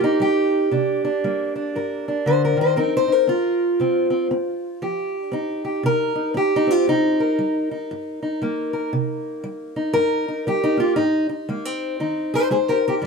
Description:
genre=acoustic country blues, solo or duo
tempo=117 BPM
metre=4/4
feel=swing 61% on 8ths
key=C minor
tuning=A4 = 439 Hz
part: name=fingerpicked steel-string acoustic guitar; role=solo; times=0.0-13.1 s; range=G2 to C5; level=-19 LUFS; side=equal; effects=none
room=light reverb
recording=none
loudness=-19 LUFS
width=side -4 dB against mid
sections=0.0-13.1 A section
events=none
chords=0.0 Cm9; 2.8 Fsus2; 6.9 Cm7; 11.0 Ab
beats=0.20 | 0.71 1.23 1.74 2.25 | 2.77 3.28 3.79 4.31 | 4.82 5.33 5.85 6.36 | 6.87 7.39 7.90 8.41 | 8.93 9.44 9.95 10.47 | 10.98 11.49 12.01 12.52 | 13.03

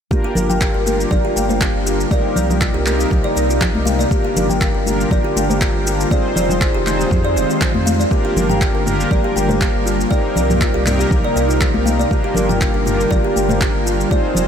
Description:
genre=afro house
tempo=120 BPM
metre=4/4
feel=swing 54% on 16ths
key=G phrygian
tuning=A4 = 441 Hz
part: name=ethereal airy pad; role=sustained chords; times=0.7-14.5 s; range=C3 to F4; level=-24 LUFS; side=equal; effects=ensemble chorus, built-in reverb, sidechain pumping
part: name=kalimba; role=arpeggios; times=0.1-14.5 s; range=F4 to G5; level=-21 LUFS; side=equal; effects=sidechain pumping, analog delay
part: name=mellow synth brass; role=stabs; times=0.1-14.5 s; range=Bb3 to C5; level=-22 LUFS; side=equal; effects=chorus, sidechain pumping, analog delay
part: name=deep house drum kit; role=drums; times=0.1-14.5 s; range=handclaps, shaker, toms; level=-24 LUFS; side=equal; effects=none
part: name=electronic kick drum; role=drums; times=0.1-14.2 s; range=none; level=-18 LUFS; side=equal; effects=none
part: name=congas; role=percussion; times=0.1-14.5 s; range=none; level=-24 LUFS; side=left 1 dB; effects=none
part: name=warm sub bass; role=bass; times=0.4-14.5 s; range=F1 to F2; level=-22 LUFS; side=equal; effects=sidechain pumping
room=moderate huge ambient reverb, RT60 7.5 s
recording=dreamy mix soaked in reverb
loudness=-14 LUFS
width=side -8 dB against mid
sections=0.1-14.5 A section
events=none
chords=0.1 Gm7; 2.1 Cm7; 4.1 Gm7; 6.1 Fm7; 8.1 Gm7; 10.1 Cm7; 12.1 Gm7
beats=| 0.11 0.61 1.11 1.61 | 2.11 2.61 3.11 3.61 | 4.11 4.61 5.11 5.61 | 6.11 6.61 7.11 7.61 | 8.11 8.61 9.11 9.61 | 10.11 10.61 11.11 11.61 | 12.11 12.61 13.11 13.61 | 14.11

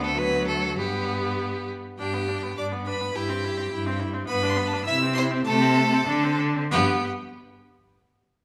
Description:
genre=quick classical-period movement for string quartet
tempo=91-107 BPM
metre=2/4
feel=rubato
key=G major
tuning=A4 = 440 Hz
part: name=rich violin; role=melody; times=0.0-7.1 s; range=G3 to E6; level=-33 LUFS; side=equal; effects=none
part: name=rich violin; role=second line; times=0.0-7.1 s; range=G4 to E5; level=-30 LUFS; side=equal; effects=none
part: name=clear viola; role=accompaniment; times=0.0-7.1 s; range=F#3 to E4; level=-31 LUFS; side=equal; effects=none
part: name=rich cello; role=bass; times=0.0-7.1 s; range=D2 to D3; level=-29 LUFS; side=equal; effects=none
room=wet recital hall reverb, RT60 1.4 s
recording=none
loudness=-25 LUFS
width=mono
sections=0.0-2.0 A section; 2.0-6.7 B section; 6.7-7.9 C section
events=slowing down 3.7-6.7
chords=0.2 D; 0.8 G; 3.2 C/G; 4.3 G; 4.9 C; 5.5 Am/C; 6.1 D5; 6.7 G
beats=0.17 | 0.78 1.38 | 1.99 2.58 | 3.16 3.72 | 4.29 4.87 | 5.46 6.07 | 6.71

